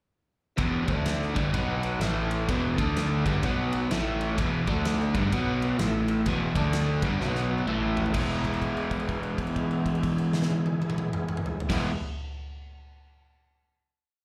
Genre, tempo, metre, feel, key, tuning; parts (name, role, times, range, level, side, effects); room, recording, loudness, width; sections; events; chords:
blues rock power trio and southern rock; 127 BPM; 4/4; swing 62% on 8ths; E mixolydian; A4 = 441 Hz
overdriven tonewheel organ; sustained chords; 0.6-11.9 s; E3 to A5; -40 LUFS; equal; slow rotary speaker, chorus vibrato
crunchy overdriven guitar; riff; 0.6-11.9 s; E2 to E4; -29 LUFS; equal
vintage muted fingered electric bass; bass; 0.6-11.9 s; E1 to D2; -35 LUFS; equal
huge arena drum kit; drums; 0.6-11.8 s; crash cymbal, kick drum, ride cymbal, snare drum, toms; -35 LUFS; equal
light reverb, small room ambience; live gig heard through the venue's PA, club reverb; -27 LUFS; mono
0.6-8.1 riff; 8.1-11.9 final chord
drum fill 7.2-8.1; tonewheel organ fill 7.4-8.1; held note 8.1-11.7
0.6 E; 0.8 D5; 1.3 E; 1.5 B5; 2.0 A5; 2.5 E; 2.7 D5; 3.2 E; 3.4 B5; 3.9 A5; 4.4 E; 4.6 D5; 5.1 E; 5.3 B5; 5.8 A5; 6.3 E; 6.5 D5; 7.0 E; 7.2 B5; 7.7 A5; 8.1 E